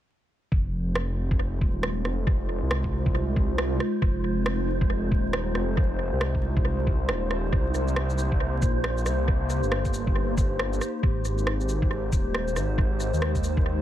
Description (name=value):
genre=future garage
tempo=137 BPM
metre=4/4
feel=swing 62% on 16ths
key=F minor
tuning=A4 = 440 Hz
part: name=warbly tape-like pad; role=sustained chords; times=1.3-13.8 s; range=Ab3 to C5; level=-31 LUFS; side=equal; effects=chorus, built-in reverb, phaser, sidechain pumping
part: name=swelling detuned saw bass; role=bass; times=0.5-13.8 s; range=Eb1 to Eb2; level=-27 LUFS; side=equal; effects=sidechain pumping
part: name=electronic kick drum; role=drums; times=0.5-13.6 s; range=none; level=-25 LUFS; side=equal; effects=none
part: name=wind-like tuned noise texture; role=texture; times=0.9-13.8 s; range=C5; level=-37 LUFS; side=equal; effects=built-in reverb
part: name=electronic rim click and shaker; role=drums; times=1.0-13.5 s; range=none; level=-31 LUFS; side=right 1 dB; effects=overdrive, tape echo
room=little or no reverb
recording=echo-heavy mix, vinyl crackle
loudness=-23 LUFS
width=side -12 dB against mid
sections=0.5-13.8 A section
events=none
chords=0.5 Fm7; 7.5 Cm7; 11.0 Abmaj7